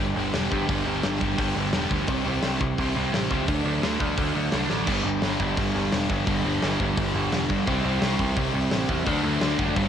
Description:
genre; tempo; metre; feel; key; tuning
punk rock; 172 BPM; 4/4; straight; G major; A4 = 441 Hz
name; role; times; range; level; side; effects
sludgy distorted guitar; riff; 0.0-9.9 s; G2 to G4; -30 LUFS; left 10 dB; overdrive, cassette tape
sludgy distorted guitar; riff; 0.0-9.9 s; G2 to D4; -28 LUFS; right 8 dB; overdrive, cassette tape
growling picked electric bass; bass; 0.0-9.9 s; E1 to G2; -30 LUFS; left 1 dB; overdrive
big rock drum kit; drums; 0.3-9.8 s; crash cymbal, hi-hat, kick drum, snare drum; -28 LUFS; left 1 dB; cassette tape
raw garage guitar; riff; 4.9-9.9 s; G2 to D4; -27 LUFS; equal; overdrive, cassette tape
room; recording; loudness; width
little or no reverb; home recording on cassette; -22 LUFS; side -8 dB against mid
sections
0.0-9.9 A section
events
drum fill 4.7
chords
0.0 G; 2.1 C; 3.5 D; 4.9 G; 7.7 C; 9.1 D

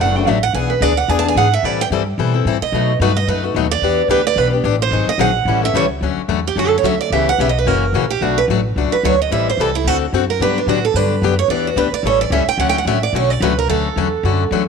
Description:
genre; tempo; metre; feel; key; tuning
acoustic string swing (jazz manouche); 219 BPM; 4/4; swing 58% on 8ths; D major from 6.0 s; A4 = 440 Hz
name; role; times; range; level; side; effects
picked steel-string acoustic guitar; melody; 0.0-14.5 s; D4 to A5; -18 LUFS; right 10 dB; none
picked plugged-in steel-string acoustic guitar; accompaniment; 0.0-14.6 s; B2 to A4; -19 LUFS; left 12 dB; none
upright bass; bass; 0.0-14.7 s; F#1 to B2; -20 LUFS; equal; none
room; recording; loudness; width
light reverb, small room ambience; 1960s-style stereo with parts hard left and right; -14 LUFS; side -6 dB against mid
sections
0.0-6.0 A section; 6.0-14.7 A section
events
steel-string acoustic guitar solo 0.0-6.0, 6.0-14.7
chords
0.0 Bm7; 0.5 E7; 1.6 Am7; 2.7 B7; 3.8 Em7; 4.9 Ab9; 5.5 A7; 6.0 Dmaj7; 7.1 C#m7b5; 7.7 F#7; 8.2 Bm7; 9.3 Am7; 9.9 D7; 10.4 Gmaj7; 11.5 Em7; 12.0 A7; 12.6 Dmaj7

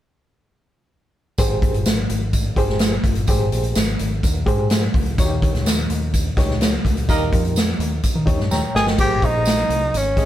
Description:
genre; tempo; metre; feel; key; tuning
uptempo 1960s-style soul; 126 BPM; 4/4; straight; Ab major; A4 = 439 Hz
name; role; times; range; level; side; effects
overdriven reed electric piano; accompaniment; 1.4-10.3 s; Ab2 to Bb5; -25 LUFS; equal; fast tremolo
deep dub picked electric bass; bass; 1.4-10.2 s; G1 to Eb3; -23 LUFS; equal; none
swinging big-band drum kit; drums; 1.4-10.3 s; crash cymbal, hi-hat, kick drum, snare drum; -19 LUFS; equal; none
tambourine; percussion; 1.4-10.1 s; none; -31 LUFS; right 3 dB; none
clear horn section; second line; 7.1-7.4 s; G3 to Bb4; -24 LUFS; right 2 dB; none
breathy tenor saxophone; melody; 8.8-10.3 s; Db4 to Ab4; -19 LUFS; right 1 dB; none
room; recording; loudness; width
light reverb; band playing live in one room; -17 LUFS; side -12 dB against mid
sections
1.4-9.0 A section; 9.0-10.3 B section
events
band accent 7.1-9.0; reed electric piano fill 8.3-9.0; drum fill 8.5-9.0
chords
1.4 Abmaj7; 5.2 Eb7; 9.0 Abmaj7

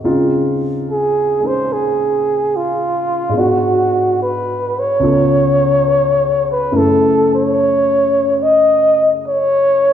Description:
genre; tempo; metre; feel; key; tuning
jazz ballad; 72 BPM; 4/4; swing 68% on 8ths; unclear; A4 = 441 Hz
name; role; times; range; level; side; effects
warm concert grand piano; accompaniment; 0.0-9.9 s; Db2 to Db5; -18 LUFS; equal; none
breathy flugelhorn; melody; 0.9-9.9 s; F4 to Eb5; -13 LUFS; equal; none
room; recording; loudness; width
wet recital hall reverb, RT60 1.7 s; recorded in a church or concert hall; -12 LUFS; side -9 dB against mid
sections
0.0-6.7 A section; 6.7-9.9 B section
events
none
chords
0.1 Dbmaj9; 3.3 Abm7b5; 5.0 Db7b13; 6.7 Gbm7

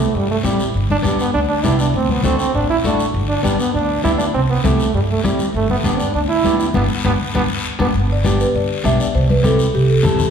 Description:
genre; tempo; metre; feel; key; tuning
latin, cumbia; 200 BPM; 4/4; straight; G major; A4 = 440 Hz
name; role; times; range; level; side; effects
clear trombone; second line; 0.0-7.9 s; G3 to E4; -19 LUFS; right 3 dB; none
electric guitar at the edge of break-up; accompaniment; 0.0-10.3 s; A3 to A4; -24 LUFS; left 2 dB; none
upright bass; bass; 0.1-10.2 s; G1 to G2; -19 LUFS; right 1 dB; none
guiro; percussion; 0.1-10.3 s; none; -29 LUFS; left 5 dB; none
congas; percussion; 0.4-10.3 s; none; -23 LUFS; left 4 dB; none
marimba with soft mallets; melody; 8.1-10.2 s; G4 to E5; -18 LUFS; equal; none
room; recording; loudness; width
wet large studio reverb, RT60 1.4 s; heard from further back in the room; -14 LUFS; side -7 dB against mid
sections
0.0-7.9 A section; 7.9-10.3 B section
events
trombone solo 0.0-7.9; band accent 6.7-7.9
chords
0.0 C; 0.7 G; 1.9 D; 3.1 G; 4.3 C; 5.5 G; 9.1 C

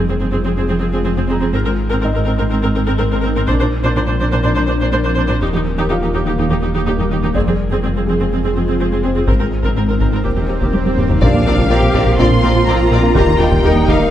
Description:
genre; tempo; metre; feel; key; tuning
cinematic, hybrid orchestral and electronic film score; 124 BPM; 4/4; straight; unclear; A4 = 441 Hz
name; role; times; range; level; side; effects
ethereal airy pad; sustained chords; 0.0-14.1 s; Eb3 to Bb4; -22 LUFS; equal; ensemble chorus, built-in reverb
dark symphonic cello section; bass; 0.0-14.1 s; Eb2 to G4; -21 LUFS; right 1 dB; none
sub bass with octave; bass; 0.0-14.1 s; Eb1 to Bb1; -20 LUFS; equal; none
felt-muted upright piano; texture; 0.0-14.1 s; C4 to Bb5; -28 LUFS; left 2 dB; tape echo
rich studio viola section; accompaniment; 0.1-14.0 s; G3 to C5; -21 LUFS; right 1 dB; none
solo taiko drums; drums; 3.5-4.4, 7.3-14.1 s; none; -20 LUFS; equal; none
swell and sub drop; sound effects; 9.7-13.2 s; none; -25 LUFS; equal; none
rich symphonic violin section; melody; 11.2-14.1 s; F5 to C6; -20 LUFS; left 2 dB; none
warm symphonic violin section; second line; 11.2-14.0 s; Bb4 to Eb5; -23 LUFS; left 2 dB; none
dark trombone section; sustained chords; 11.2-14.1 s; D3 to G3; -22 LUFS; right 4 dB; none
mellow French horn section; sustained chords; 11.2-14.1 s; Bb3 to Bb4; -22 LUFS; left 6 dB; none
fat analog bass; riff; 11.2-14.1 s; Eb2 to Bb3; -18 LUFS; right 1 dB; none
rich symphonic double bass section; bass; 11.2-14.1 s; Bb1 to Eb2; -21 LUFS; right 2 dB; none
room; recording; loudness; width
moderate scoring stage reverb, RT60 1.9 s; none; -13 LUFS; side -11 dB against mid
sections
0.0-11.2 A section; 11.2-14.1 B section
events
build-up 0.0-11.2; swell 9.7-11.2; drum fill 10.7-11.2; impact 11.2-13.2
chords
0.0 Fm; 1.5 Abadd9; 3.5 Bbadd9; 5.4 Eb; 7.3 Fm; 9.3 Abadd9; 10.3 Eb; 11.2 Bbadd9; 13.2 Eb

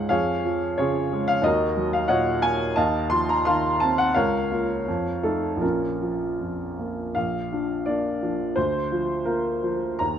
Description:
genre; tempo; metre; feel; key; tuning
classical, romantic character piece for solo piano; 76-94 BPM; 2/4; rubato; Bb minor, Bb major from 7.2 s; A4 = 439 Hz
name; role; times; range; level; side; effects
warm baby grand piano; solo; 0.0-10.2 s; Bb1 to C6; -22 LUFS; equal; none
room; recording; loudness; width
moderate concert hall reverb, RT60 1.9 s; close, detailed microphones, faint mains hum; -22 LUFS; side -9 dB against mid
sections
0.0-7.2 A section; 7.2-10.2 B section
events
none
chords
0.1 Db/F; 1.4 Ebm7; 2.8 F7/Eb; 4.2 Bbm/Db; 4.9 F7; 5.6 Bbm; 7.2 Bb; 8.6 Bb/D

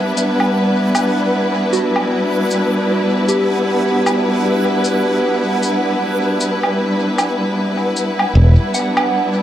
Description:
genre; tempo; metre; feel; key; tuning
ambient dub; 77 BPM; 4/4; swing 59% on 16ths; E minor; A4 = 440 Hz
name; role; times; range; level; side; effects
warm symphonic string section; sustained chords; 0.0-9.4 s; G3 to B4; -16 LUFS; equal; none
soft synth bell; arpeggios; 0.0-9.4 s; F#4 to F#5; -23 LUFS; right 1 dB; chorus, phaser, low-pass filter, tape echo
backwards swelling texture; texture; 0.0-9.4 s; E5 to F#5; -26 LUFS; right 3 dB; built-in reverb
cabasa and woodblock; drums; 0.2-9.1 s; none; -21 LUFS; equal; dub echo
fingered electric bass; bass; 8.4-8.6 s; E1; -9 LUFS; equal; none
room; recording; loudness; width
moderate spring reverb, RT60 2.3 s; none; -14 LUFS; side -11 dB against mid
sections
0.0-8.4 A section; 8.4-9.4 B section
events
filter sweep on synth bell 0.0-8.4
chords
0.0 Em7

